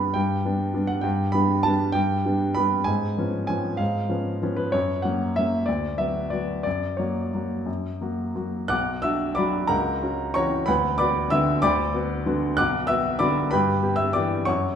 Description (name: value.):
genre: classical, piano waltz.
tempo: 170-208 BPM.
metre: 3/4.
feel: rubato.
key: B minor.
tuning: A4 = 440 Hz.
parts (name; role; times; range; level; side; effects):
warm baby grand piano; solo; 0.0-14.8 s; B1 to F#6; -22 LUFS; equal; none.
room: wet recital hall reverb, RT60 1.4 s.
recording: minimal, uncompressed stereo recording.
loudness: -22 LUFS.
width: side -8 dB against mid.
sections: 0.0-8.7 A section; 8.7-14.8 B section.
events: none.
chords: 0.0 G; 2.9 C#7/G#; 4.7 F#; 5.7 Bm/D; 6.7 F#; 8.7 Bm; 9.7 F#7/C#; 10.7 Bm/D; 12.6 Bm; 13.5 Em/G.